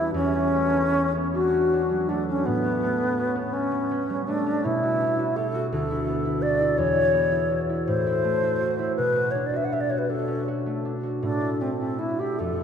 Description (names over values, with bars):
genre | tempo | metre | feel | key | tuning
classical, impressionist duo for alto flute and harp | 49-56 BPM (dotted quarters) | 6/8 | rubato | unclear | A4 = 440 Hz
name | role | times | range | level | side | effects
alto flute | melody | 0.0-12.6 s | B3 to F#5 | -24 LUFS | left 1 dB | none
concert harp | accompaniment | 0.0-12.6 s | D2 to G4 | -27 LUFS | equal | none
room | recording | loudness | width
wet cathedral reverb, RT60 5.1 s | in a vast, echoing space | -22 LUFS | side -7 dB against mid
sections
0.0-12.6 A section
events
none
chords
0.1 Bm9/E; 2.5 A9; 4.6 B7sus4; 5.7 D69; 6.8 Esus2; 7.9 Am6; 9.0 Bm7; 11.2 A5